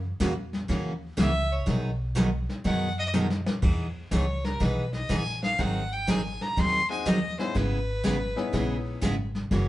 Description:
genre	country, western swing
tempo	122 BPM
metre	4/4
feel	swing 67% on 8ths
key	unclear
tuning	A4 = 440 Hz
part	upright bass	bass	0.0-9.7 s	F#1 to F#2	-30 LUFS	equal	none
part	picked steel-string acoustic guitar	accompaniment	0.2-9.7 s	B2 to G#4	-29 LUFS	right 1 dB	none
part	vintage brush drum kit	drums	0.2-9.7 s	brushed snare drum, crash cymbal, hi-hat, kick drum, snare drum, toms	-30 LUFS	left 1 dB	none
part	clear fiddle	second line	1.2-9.0 s	A#4 to B#5	-30 LUFS	left 1 dB	none
part	bright upright piano	accompaniment	6.9-9.0 s	G#3 to G#4	-34 LUFS	left 4 dB	none
room	moderate studio reverb, RT60 0.8 s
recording	band playing live in one room, nothing above 10.9 kHz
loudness	-24 LUFS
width	side -15 dB against mid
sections	0.0-9.7 A section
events	fiddle solo 0.0-9.7; drum fill 3.1-3.6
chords	0.0 F#6; 1.7 B6; 3.6 Emaj7; 5.6 G#7; 7.5 C#m9/G#

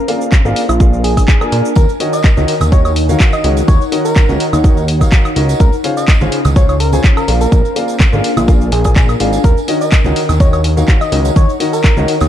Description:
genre	piano house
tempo	125 BPM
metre	4/4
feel	swing 54% on 16ths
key	Eb dorian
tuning	A4 = 440 Hz
part	soft struck synth lead	melody	0.0-12.2 s	F4 to Eb5	-21 LUFS	equal	chorus, ping-pong delay
part	ethereal airy pad	texture	0.0-12.3 s	Db4 to Ab5	-21 LUFS	left 2 dB	ensemble chorus, built-in reverb, sidechain pumping
part	warm upright piano	riff	0.1-12.1 s	Db3 to Ab5	-18 LUFS	left 1 dB	sidechain pumping
part	punchy analog drum machine	drums	0.1-12.3 s	cabasa, handclaps, hi-hat, woodblock	-20 LUFS	equal	none
part	electronic kick drum	drums	0.3-11.9 s	none	-10 LUFS	equal	none
part	fat analog bass	bass	0.5-12.3 s	Ab1 to Bb2	-14 LUFS	equal	sidechain pumping
part	tambourine and congas	percussion	1.8-12.3 s	none	-24 LUFS	right 3 dB	none
room	digital ambience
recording	dark, warm production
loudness	-9 LUFS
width	side -11 dB against mid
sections	0.0-12.3 A section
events	none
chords	0.0 Bb7; 1.8 Ebm7; 5.6 Dbmaj7; 7.3 Bb7; 9.4 Ebm7

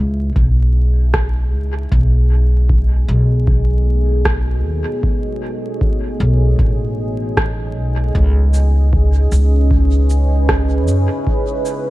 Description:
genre	ambient dub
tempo	77 BPM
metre	4/4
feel	swing 53% on 16ths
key	C# minor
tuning	A4 = 440 Hz
part	deep dark ambient pad	sustained chords	0.0-11.9 s	B3 to E5	-23 LUFS	right 1 dB	chorus, built-in reverb
part	upright bass	bass	0.0-11.1 s	A1 to F#2	-14 LUFS	equal	none
part	electronic kick drum	drums	0.4-11.4 s	none	-18 LUFS	equal	none
part	electronic rim click and cabasa	drums	1.1-11.8 s	none	-22 LUFS	right 2 dB	dub echo
room	little or no reverb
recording	vinyl crackle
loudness	-13 LUFS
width	side -17 dB against mid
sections	0.0-11.9 A section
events	fade-in on ambient pad 0.0-11.9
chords	0.0 C#m9; 1.9 B13; 8.2 C#m9

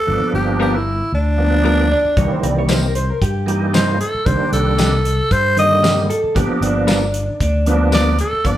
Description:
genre	straight-eighth soul blues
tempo	115 BPM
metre	4/4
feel	swing 54% on 16ths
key	unclear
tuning	A4 = 440 Hz
part	growling tenor saxophone	melody	0.0-8.6 s	D4 to Eb5	-18 LUFS	equal	none
part	bright tonewheel organ	accompaniment	0.1-8.6 s	D3 to D#4	-20 LUFS	right 2 dB	slow rotary speaker, overdrive, chorus vibrato
part	fretless electric bass	bass	0.1-8.6 s	G1 to G2	-19 LUFS	equal	none
part	direct-recorded clean electric guitar	stabs	0.6-8.1 s	C3 to A#4	-24 LUFS	left 3 dB	none
part	electric guitar through a small old amp	second line	1.9-7.9 s	D4 to D5	-22 LUFS	equal	none
part	damped 70s drum kit	drums	2.2-8.6 s	hi-hat, kick drum, snare drum, tambourine	-21 LUFS	equal	none
room	wet large studio reverb, RT60 1.0 s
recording	band playing live in one room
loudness	-14 LUFS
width	side -12 dB against mid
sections	0.0-8.6 A section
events	none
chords	0.0 G7#9; 2.2 C7#9; 4.3 Cm7; 6.4 G7#9

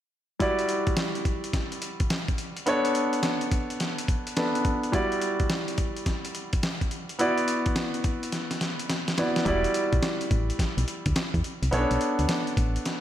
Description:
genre	R&B, new jack swing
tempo	106 BPM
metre	4/4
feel	swing 65% on 16ths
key	E dorian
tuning	A4 = 440 Hz
part	clear baby grand piano	accompaniment	0.4-13.0 s	G3 to D5	-27 LUFS	equal	none
part	dusty soul sampler-style drum kit	drums	0.4-13.0 s	hi-hat, kick drum, snare drum	-28 LUFS	equal	overdrive
part	solid FM bass	bass	9.5-12.8 s	E1 to E2	-26 LUFS	equal	none
room	moderate echo chamber reverb, RT60 2.0 s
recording	none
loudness	-24 LUFS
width	side -11 dB against mid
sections	0.4-9.5 A section; 9.5-13.0 B section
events	drum fill 8.3-9.5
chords	0.4 Em9; 2.7 Bm9; 4.9 Em9; 7.2 D69; 9.5 Em9; 11.7 Bm9

